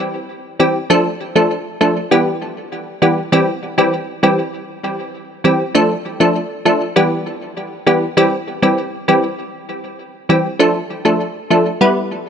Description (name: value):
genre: dancehall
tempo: 99 BPM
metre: 4/4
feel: straight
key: C major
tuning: A4 = 440 Hz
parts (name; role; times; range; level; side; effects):
- wavetable chord stab; solo; 0.6-12.3 s; E3 to B4; -14 LUFS; equal; tape echo
room: light reverb, digital ambience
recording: dry, gritty hardware recording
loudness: -14 LUFS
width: side -7 dB against mid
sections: 0.0-12.3 A section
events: none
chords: 0.0 C; 0.9 Dm; 2.1 Em; 3.3 C; 5.7 Dm; 7.0 Em; 8.2 C; 10.6 Dm